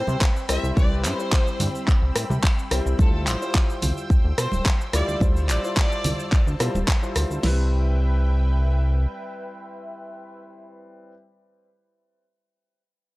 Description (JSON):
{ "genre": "nu-disco, nu disco", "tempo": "108 BPM", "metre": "4/4", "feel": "straight", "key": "C major", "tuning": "A4 = 442 Hz", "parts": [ { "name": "clear chamber violin section", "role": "melody", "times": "0.0-6.3 s", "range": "A4 to E5", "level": "-32 LUFS", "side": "equal", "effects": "tape echo" }, { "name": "warm concert grand piano", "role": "accompaniment", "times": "0.0-11.1 s", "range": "G3 to D5", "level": "-32 LUFS", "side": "left 2 dB", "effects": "sidechain pumping" }, { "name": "lush unison pad", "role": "sustained chords", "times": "0.0-10.4 s", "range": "C4 to E6", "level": "-36 LUFS", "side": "equal", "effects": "chorus, phaser, sidechain pumping" }, { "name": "chorused synth bass", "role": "bass", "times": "0.0-9.1 s", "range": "D1 to C3", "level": "-22 LUFS", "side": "equal", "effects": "tube saturation" }, { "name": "pop drum kit", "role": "drums", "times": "0.1-7.4 s", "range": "cabasa, handclaps, hi-hat, rim click", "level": "-27 LUFS", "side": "equal", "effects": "none" }, { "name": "congas", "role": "percussion", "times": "0.1-6.9 s", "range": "none", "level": "-31 LUFS", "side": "right 1 dB", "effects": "none" }, { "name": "pop drum kit", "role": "drums", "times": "0.2-7.6 s", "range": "crash cymbal, kick drum, snare drum", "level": "-20 LUFS", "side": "equal", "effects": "none" } ], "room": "digital ambience", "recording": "dry, gritty hardware recording", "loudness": "-19 LUFS", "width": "side -20 dB against mid", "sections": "0.0-7.4 A section; 7.4-9.7 B section", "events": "drop 0.0-7.4", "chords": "0.0 Cmaj7; 3.0 Dm11; 7.4 Cmaj7", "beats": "0.21 | 0.77 1.32 1.88 2.44 | 2.99 3.55 4.10 4.66 | 5.21 5.77 6.32 6.88 | 7.43 7.99 8.55 9.10" }